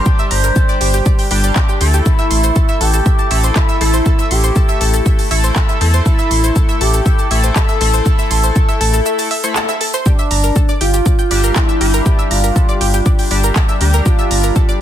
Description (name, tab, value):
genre	melodic techno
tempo	120 BPM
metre	4/4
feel	straight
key	G dorian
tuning	A4 = 440 Hz
part	expressive portamento lead	melody	0.0-14.7 s	D4 to C5	-20 LUFS	right 1 dB	wide subtle chorus, sidechain pumping, dub echo
part	analog pluck	arpeggios	0.0-14.8 s	G4 to Bb6	-22 LUFS	right 1 dB	chorus, sidechain pumping, ping-pong delay
part	sync-sweep polysynth	stabs	0.0-14.8 s	G3 to A4	-21 LUFS	left 2 dB	chorus, sidechain pumping, ping-pong delay
part	electronic kick drum	drums	0.1-14.7 s	none	-13 LUFS	equal	none
part	techno drum kit	drums	0.1-14.8 s	handclaps, hi-hat, shaker	-21 LUFS	equal	sidechain pumping on perc, sidechain pumping on hats
part	round analog bass	bass	0.3-14.5 s	G1 to E2	-14 LUFS	equal	sidechain pumping
room	little or no reverb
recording	dense, heavily limited modern master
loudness	-11 LUFS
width	side -11 dB against mid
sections	0.0-14.8 A section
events	break 9.1-10.1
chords	0.0 Gmadd9; 2.1 Am; 10.1 Gmadd9